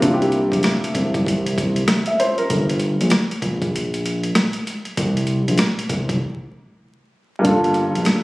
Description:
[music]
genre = hip hop, boom-bap hip-hop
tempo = 97 BPM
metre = 4/4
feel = swing 61% on 16ths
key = G dorian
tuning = A4 = 441 Hz
[part]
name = warm grand piano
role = accompaniment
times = 0.0-2.5, 7.4-8.2 s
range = G2 to E5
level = -19 LUFS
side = equal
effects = cassette tape, high-pass filter, low-pass filter
[part]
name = smooth synth bass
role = bass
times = 0.0-8.1 s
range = G1 to C2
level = -21 LUFS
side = equal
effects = none
[part]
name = boom bap sampler-style drum kit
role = drums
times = 0.0-8.2 s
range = hi-hat, kick drum, rim click, snare drum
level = -21 LUFS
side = equal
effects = overdrive
[sound]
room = light reverb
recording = recorded on a phone in the room, club reverb, vinyl crackle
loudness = -17 LUFS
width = side -20 dB against mid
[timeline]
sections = 0.0-8.2 A section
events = break 2.5-7.4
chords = 0.0 C7; 2.5 Gm; 5.0 N.C.; 7.4 Gm7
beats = | 0.03 0.64 1.26 1.88 | 2.50 3.12 3.74 4.36 | 4.97 5.59 6.21 6.83 | 7.45 8.07

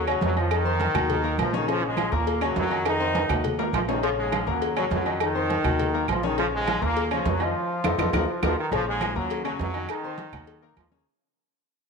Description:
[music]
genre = latin, salsa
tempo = 205 BPM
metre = 4/4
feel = straight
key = unclear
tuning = A4 = 440 Hz
[part]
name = brilliant trombone section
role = melody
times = 0.0-11.1 s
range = Gb2 to F4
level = -27 LUFS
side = equal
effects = none
[part]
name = bright upright piano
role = accompaniment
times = 0.0-11.0 s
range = Db3 to C6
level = -29 LUFS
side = left 9 dB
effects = none
[part]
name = upright bass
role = bass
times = 0.0-11.0 s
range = Bb1 to F2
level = -30 LUFS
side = right 2 dB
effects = none
[part]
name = agogo bells and timbales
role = percussion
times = 0.1-10.9 s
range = none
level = -31 LUFS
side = right 14 dB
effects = none
[part]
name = claves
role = percussion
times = 0.1-10.9 s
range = none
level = -38 LUFS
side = right 14 dB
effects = none
[part]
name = congas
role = percussion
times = 0.1-11.1 s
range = none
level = -34 LUFS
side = right 2 dB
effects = none
[part]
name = cowbell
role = percussion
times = 0.2-11.1 s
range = none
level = -33 LUFS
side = left 10 dB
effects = none
[sound]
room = moderate echo chamber reverb, RT60 1.8 s, studio reverb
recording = 1960s-style stereo with parts hard left and right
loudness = -22 LUFS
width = side -4 dB against mid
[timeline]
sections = 0.0-8.7 A section; 8.7-11.1 B section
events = drum fill 2.9-4.0, 8.0-8.7; band accent 7.5-8.7; fade-out 8.7-11.1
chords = 0.0 Ebm7; 0.5 F5; 1.1 Ebm7; 1.7 Bbm7; 2.3 Ebm7; 2.9 F5; 3.4 Ebm7; 4.0 Bbm7; 4.6 Ebm7; 5.2 F5; 5.8 Ebm7; 6.4 Bbm7; 7.0 Ebm7; 7.5 F7; 8.1 Ebm; 8.7 Bbm7; 9.3 Ebm7; 9.9 Ebm6; 10.5 Ebm7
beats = 0.22 | 0.51 0.81 1.10 1.39 | 1.69 1.98 2.27 2.57 | 2.86 3.15 3.45 3.74 | 4.03 4.33 4.62 4.91 | 5.21 5.50 5.79 6.08 | 6.38 6.67 6.96 7.26 | 7.55 7.84 8.13 8.43 | 8.72 9.01 9.30 9.60 | 9.89 10.18 10.48 10.77

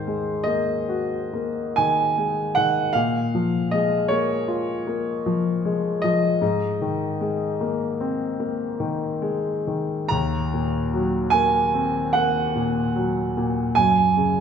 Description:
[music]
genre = classical, impressionist solo piano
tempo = 43-54 BPM (dotted quarters)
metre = 9/8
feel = rubato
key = unclear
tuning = A4 = 441 Hz
[part]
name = clear concert grand piano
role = solo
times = 0.0-14.4 s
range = Eb2 to Bb5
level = -20 LUFS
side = equal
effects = none
[sound]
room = wet recital hall reverb, RT60 1.6 s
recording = minimal, uncompressed stereo recording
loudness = -20 LUFS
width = side -7 dB against mid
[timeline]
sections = 0.0-14.4 A section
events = none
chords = 0.0 Ab9; 3.0 Bbm7; 6.4 Abadd9; 10.1 Ebm6; 13.8 Gbsus2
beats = 0.46 1.77 | 2.95 4.11 5.25 | 6.41 7.59 8.79 | 10.12 11.34 12.56 | 13.77

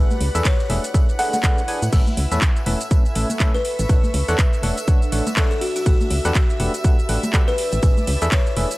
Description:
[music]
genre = piano house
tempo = 122 BPM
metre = 4/4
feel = swing 58% on 16ths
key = unclear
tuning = A4 = 440 Hz
[part]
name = warm studio violin section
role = sustained chords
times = 0.0-8.8 s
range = E5 to F#6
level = -33 LUFS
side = right 1 dB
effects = sidechain pumping
[part]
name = barking FM electric piano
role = riff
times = 0.0-8.7 s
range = A2 to G#5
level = -27 LUFS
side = left 1 dB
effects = chorus, tremolo, sidechain pumping
[part]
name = solid FM bass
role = bass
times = 0.0-8.7 s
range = E1 to A2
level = -21 LUFS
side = equal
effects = sidechain pumping
[part]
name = granular cloud pad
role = texture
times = 0.0-8.8 s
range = D4 to C#6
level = -35 LUFS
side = right 1 dB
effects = built-in reverb, sidechain pumping
[part]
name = house drum kit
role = drums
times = 0.1-8.8 s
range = crash cymbal, handclaps, hi-hat, shaker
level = -27 LUFS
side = right 1 dB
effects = none
[part]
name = tambourine and congas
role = percussion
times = 0.1-8.8 s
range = none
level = -32 LUFS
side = equal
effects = none
[part]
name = buzzing kalimba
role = melody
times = 0.5-8.5 s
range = F#4 to F#5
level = -26 LUFS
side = left 2 dB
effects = none
[part]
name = electronic kick drum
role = drums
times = 0.5-8.4 s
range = none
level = -17 LUFS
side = equal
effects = none
[sound]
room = digital ambience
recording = dry, gritty hardware recording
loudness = -16 LUFS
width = side -19 dB against mid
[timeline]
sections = 0.0-8.8 A section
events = none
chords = 0.0 E7; 1.9 Aadd9; 3.6 Dmaj7; 5.9 Gmaj7; 7.6 E7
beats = 0.45 0.94 1.44 | 1.93 2.42 2.91 3.40 | 3.89 4.39 4.88 5.37 | 5.86 6.35 6.84 7.34 | 7.83 8.32

